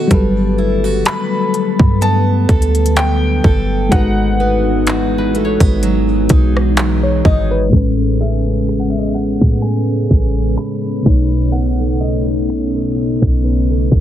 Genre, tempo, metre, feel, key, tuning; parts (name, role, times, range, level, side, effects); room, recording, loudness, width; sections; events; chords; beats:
contemporary R&B; 63 BPM; 4/4; swing 54% on 16ths; A4 = 440 Hz
mellow FM electric piano; accompaniment; 0.0-14.0 s; A2 to D#5; -19 LUFS; left 4 dB; chorus
glassy FM pad; sustained chords; 0.0-14.0 s; C#3 to A4; -22 LUFS; left 1 dB; ensemble chorus, built-in reverb
picked steel-string acoustic guitar; arpeggios; 0.0-14.0 s; G#2 to B4; -22 LUFS; right 7 dB
clean 808-style bass; bass; 0.1-14.0 s; G1 to A2; -16 LUFS; equal
trap drum kit; drums; 0.1-14.0 s; finger snaps, handclaps, hi-hat, kick drum, rim click; -14 LUFS; equal
clear concert grand piano; melody; 1.1-14.0 s; D#5 to B5; -23 LUFS; equal
koto; texture; 1.1-10.7 s; D#4 to C#5; -32 LUFS; left 1 dB; ping-pong delay
studio reverb; heavily compressed radio sound, low-pass filter; -12 LUFS; side -11 dB against mid
0.0-7.7 A section; 7.7-14.0 B section
filter sweep 7.7-14.0
0.1 Gmaj9; 3.9 Emaj9/G#; 7.7 Amaj9; 11.1 B9
| 0.11 1.06 2.01 2.97 | 3.92 4.87 5.82 6.78 | 7.73 8.68 9.63 10.59 | 11.54 12.49 13.44